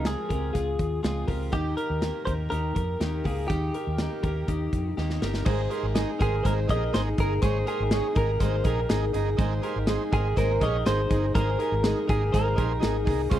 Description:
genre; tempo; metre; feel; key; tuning
jangly indie pop; 122 BPM; 4/4; straight; Ab major; A4 = 440 Hz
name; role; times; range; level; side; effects
direct-recorded clean electric guitar; melody; 0.0-13.0 s; G4 to Eb5; -31 LUFS; right 1 dB; lush chorus
picked steel-string acoustic guitar; accompaniment; 0.0-13.4 s; Db3 to Ab4; -34 LUFS; right 8 dB; none
twelve-string electric guitar; arpeggios; 0.0-13.4 s; Eb4 to C5; -32 LUFS; left 6 dB; spring reverb
vintage muted fingered electric bass; bass; 0.0-13.4 s; G1 to F2; -28 LUFS; equal; none
modern studio drum kit; drums; 0.1-13.4 s; crash cymbal, hi-hat, kick drum, snare drum; -29 LUFS; equal; none
overdriven combo organ; accompaniment; 5.4-13.4 s; Db4 to Db5; -34 LUFS; right 8 dB; none
room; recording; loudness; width
small room ambience; none; -23 LUFS; side -12 dB against mid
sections
0.0-5.5 A section; 5.5-13.4 B section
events
drum fill 5.0-5.5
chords
0.0 Dbmaj7; 1.5 Eb; 5.5 Absus2

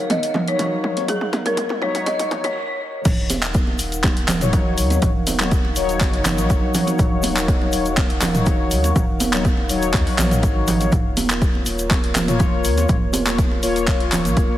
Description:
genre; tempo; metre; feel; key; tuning
afro house; 122 BPM; 4/4; straight; Eb minor; A4 = 441 Hz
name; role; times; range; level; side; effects
folk marimba with medium hard mallets; melody; 0.0-2.6 s; Ab4 to Eb5; -24 LUFS; equal; ping-pong delay
dark analog pad; sustained chords; 0.0-14.6 s; Bb3 to Gb5; -28 LUFS; equal; chorus, sidechain pumping
mellow synth brass; stabs; 0.0-14.6 s; Gb3 to Db5; -24 LUFS; left 3 dB; chorus, sidechain pumping, ping-pong delay
warm sub bass; bass; 0.0-14.5 s; Eb1 to Eb2; -25 LUFS; equal; sidechain pumping, high-pass filter
deep house drum kit; drums; 0.1-14.5 s; crash cymbal, handclaps, hi-hat, toms; -24 LUFS; equal; none
congas; percussion; 0.1-14.5 s; none; -25 LUFS; right 3 dB; none
electronic kick drum; drums; 3.1-14.5 s; none; -19 LUFS; equal; none
egg shaker; percussion; 3.1-14.5 s; none; -32 LUFS; left 3 dB; none
room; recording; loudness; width
light reverb; heavily compressed radio sound, high-pass filter; -17 LUFS; side -13 dB against mid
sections
0.0-3.1 A section; 3.1-14.6 B section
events
build-up 0.0-3.1; drum fill 0.0-2.6; filter sweep on analog polysynth 0.0-3.1; filter sweep on marimba 0.0-3.1; stop 2.6-3.1; drop 3.1-14.6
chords
0.0 Ebm7; 10.9 Bbm/Eb

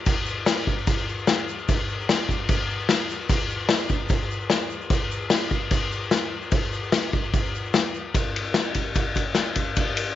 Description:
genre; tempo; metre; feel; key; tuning
rock; 149 BPM; 4/4; straight; none; none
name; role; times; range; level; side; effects
vintage drum kit; drums; 0.1-10.1 s; crash cymbal, kick drum, ride cymbal, snare drum; -22 LUFS; left 1 dB; none
egg shaker; percussion; 0.1-10.1 s; none; -46 LUFS; right 16 dB; none
room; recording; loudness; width
moderate plate reverb, RT60 1.1 s, small room ambience; 1960s-style stereo, nothing above 7.5 kHz; -22 LUFS; side -12 dB against mid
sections
0.0-8.1 A section; 8.1-10.2 B section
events
none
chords
none

